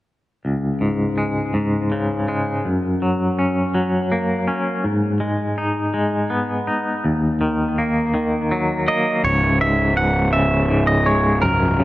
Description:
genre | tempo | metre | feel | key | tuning
rock | 54 BPM (dotted quarters) | 6/8 | straight | C# dorian | A4 = 438 Hz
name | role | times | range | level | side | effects
twangy electric guitar | arpeggios | 0.4-11.8 s | C#2 to D#4 | -19 LUFS | left 1 dB | tremolo, analog delay
twangy electric guitar | melody | 8.9-11.8 s | A#4 to F#5 | -19 LUFS | right 2 dB | analog delay
fuzz picked electric bass | bass | 9.2-11.8 s | C#1 | -20 LUFS | equal | overdrive
room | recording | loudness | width
moderate plate reverb, RT60 3.0 s | none | -17 LUFS | side -16 dB against mid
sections
0.4-9.2 A section; 9.2-11.8 B section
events
none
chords
0.4 C#5; 2.6 F#; 4.8 G#m; 7.0 D#m; 9.2 C#5

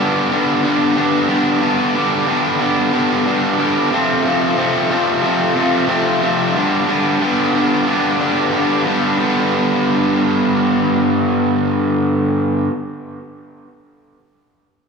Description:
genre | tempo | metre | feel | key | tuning
rock | 91 BPM | 4/4 | straight | G mixolydian | A4 = 439 Hz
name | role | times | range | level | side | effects
cranked stack guitar | solo | 0.0-12.7 s | F2 to D4 | -14 LUFS | equal | overdrive, spring reverb, slapback echo, tape echo
room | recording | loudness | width
wet club reverb, RT60 0.6 s | live gig heard through the venue's PA, club reverb | -14 LUFS | side -5 dB against mid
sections
0.0-9.2 A section; 9.2-11.8 B section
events
none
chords
0.0 G; 3.9 F; 6.5 G

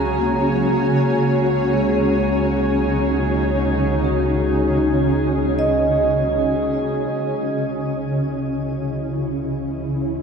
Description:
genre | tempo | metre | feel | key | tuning
ambient | 78 BPM | 4/4 | straight | C# dorian | A4 = 440 Hz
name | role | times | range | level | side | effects
granular cloud pad | sustained chords | 0.0-10.2 s | C#3 to C#5 | -20 LUFS | equal | built-in reverb, shimmer reverb
vibraphone with medium hard mallets | arpeggios | 0.0-7.7 s | G#3 to A#5 | -23 LUFS | right 1 dB | diffuse ambient delay, shimmer reverb
warm sub bass | bass | 0.0-10.2 s | C#2 | -28 LUFS | equal | none
analog drone | drone | 0.0-7.2 s | C#3 to G#3 | -32 LUFS | right 1 dB | none
drifting glass-harmonics texture | texture | 0.0-7.1 s | G#4 to G#5 | -29 LUFS | right 2 dB | chorus, built-in reverb, shimmer reverb
room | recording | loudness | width
wet huge ambient reverb, RT60 7.9 s | none | -17 LUFS | side -6 dB against mid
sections
0.0-7.1 A section; 7.1-10.2 A section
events
none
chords
0.0 E6/C#; 1.0 C#sus24; 7.1 C#m

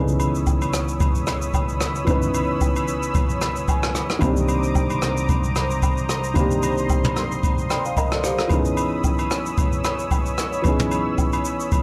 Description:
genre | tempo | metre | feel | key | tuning
amapiano | 112 BPM | 4/4 | swing 55% on 16ths | unclear | A4 = 442 Hz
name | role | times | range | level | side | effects
dark concert grand piano | accompaniment | 0.0-11.8 s | Eb3 to Bb5 | -27 LUFS | equal | none
lush unison pad | sustained chords | 0.0-11.8 s | C5 to E6 | -32 LUFS | equal | chorus, sidechain pumping
plucky analog bass | bass | 0.0-8.5 s | C2 to C#2 | -30 LUFS | equal | transformer saturation
jazz brush drum kit | drums | 0.1-11.8 s | kick drum, rim click, shaker, toms | -25 LUFS | equal | none
agogo bells and woodblock | percussion | 0.2-11.8 s | none | -33 LUFS | equal | none
room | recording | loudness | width
small room reverb | dry, gritty hardware recording | -22 LUFS | mono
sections
0.0-11.8 A section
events
grand piano fill 3.4-4.2, 7.7-8.5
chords
0.0 C#m9; 4.2 Cm9; 8.5 C#m9

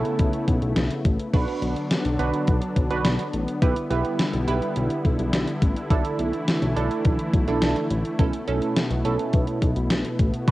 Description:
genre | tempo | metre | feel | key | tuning
synth-pop | 105 BPM | 4/4 | straight | unclear | A4 = 441 Hz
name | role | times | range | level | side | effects
funky polysynth comp | accompaniment | 0.0-10.5 s | C#4 to B4 | -27 LUFS | right 5 dB | chorus, cassette tape
warm analog pad | sustained chords | 0.0-10.5 s | B2 to E4 | -28 LUFS | left 1 dB | chorus, cassette tape
chorused synth bass | bass | 0.0-10.5 s | A1 to B1 | -25 LUFS | left 1 dB | none
gated 80s digital drum machine | drums | 0.1-10.5 s | crash cymbal, hi-hat, kick drum, snare drum | -23 LUFS | left 1 dB | gated reverb, gated reverb snare, overdrive, cassette tape
room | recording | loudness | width
digital ambience | home recording on cassette | -21 LUFS | side -17 dB against mid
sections
0.0-1.3 A section; 1.3-10.5 A section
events
none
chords
0.0 Aadd9/B; 1.3 Bm; 3.6 Em7/B; 5.9 Dsus2/B; 8.2 Aadd9/B

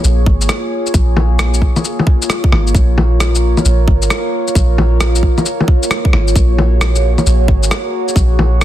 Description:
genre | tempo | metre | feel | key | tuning
future garage | 133 BPM | 4/4 | swing 64% on 16ths | Bb minor | A4 = 439 Hz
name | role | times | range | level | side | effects
warbly tape-like pad | sustained chords | 0.0-8.6 s | Bb3 to Db5 | -19 LUFS | right 1 dB | chorus, built-in reverb, phaser, vintage 12-bit sampler grit, sidechain pumping
soft 808-style bass | bass | 0.0-8.6 s | Ab1 to Bb1 | -13 LUFS | equal | tube saturation, sidechain pumping
electronic shaker, rim click and bongos | drums | 0.0-8.6 s | none | -18 LUFS | left 2 dB | soft clipping on snare
electronic kick drum | drums | 0.3-8.3 s | none | -12 LUFS | equal | none
room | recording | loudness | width
light reverb | dense, heavily limited modern master | -11 LUFS | side -13 dB against mid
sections
0.0-8.6 A section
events
none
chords
0.0 Bbm7; 6.4 Gbadd9

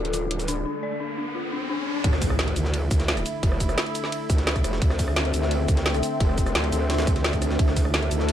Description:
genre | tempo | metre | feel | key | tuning
dark technical drum and bass | 173 BPM | 4/4 | straight | D minor | A4 = 439 Hz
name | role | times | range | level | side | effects
sweeping resonant pad | sustained chords | 0.0-8.3 s | D3 to A4 | -32 LUFS | equal | chorus, sidechain pumping
dark detuned synth bell | arpeggios | 0.0-2.0 s | D4 to D5 | -31 LUFS | left 5 dB | chorus, sidechain pumping, digital delay
growl bass | bass | 0.0-8.3 s | D1 to D2 | -26 LUFS | equal | chorus, overdrive, sidechain pumping
drum and bass drum kit | drums | 0.0-8.3 s | hi-hat, rim click, shaker, snare drum | -28 LUFS | equal | none
riser and impact | sound effects | 0.3-3.4 s | none | -32 LUFS | equal | none
deep dark ambient pad | texture | 0.0-8.3 s | D4 to G5 | -31 LUFS | left 1 dB | chorus, built-in reverb, sidechain pumping
electronic kick drum | drums | 2.0-7.8 s | none | -22 LUFS | equal | none
jungle sampler-style drum kit | drums | 2.0-8.3 s | hi-hat, ride cymbal, snare drum | -35 LUFS | right 1 dB | overdrive, high-pass filter on cymbals, high-pass filter on snare, high-pass filter on hats
room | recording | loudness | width
light reverb | none | -22 LUFS | side -10 dB against mid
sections
0.0-2.0 A section; 2.0-8.3 B section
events
riser 0.3-2.0; break 0.7-2.0; drop 2.0-8.3; impact 2.0-3.4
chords
0.0 D5

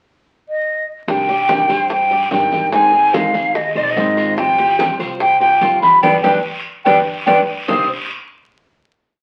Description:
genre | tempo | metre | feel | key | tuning
latin, Cuban son and guajira | 146 BPM | 4/4 | straight | C harmonic minor | A4 = 440 Hz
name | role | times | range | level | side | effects
hollow silver concert flute | melody | 0.5-7.9 s | D5 to Eb6 | -16 LUFS | equal | none
nylon-string guitar | accompaniment | 1.1-7.9 s | C3 to Ab4 | -26 LUFS | equal | none
upright bass | bass | 1.1-7.9 s | G1 to Ab2 | -36 LUFS | equal | none
bongos | percussion | 1.1-7.8 s | none | -28 LUFS | equal | none
claves | percussion | 1.1-7.8 s | none | -38 LUFS | equal | none
congas | percussion | 1.1-7.8 s | none | -30 LUFS | equal | none
guiro | percussion | 1.1-7.8 s | none | -32 LUFS | equal | none
Cuban tres | arpeggios | 1.3-7.9 s | B3 to C5 | -25 LUFS | equal | none
room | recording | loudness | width
wet studio reverb, RT60 0.7 s | very old 78 rpm record, vinyl crackle | -15 LUFS | mono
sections
0.0-1.1 pickup bar; 1.1-7.7 A section; 7.7-9.2 final chord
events
band accent 6.0-7.7; drum fill 7.1-7.7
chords
0.0 N.C.; 1.1 Cmadd9; 2.7 Ab; 4.4 Fmadd9/Ab; 6.0 G; 7.7 C5

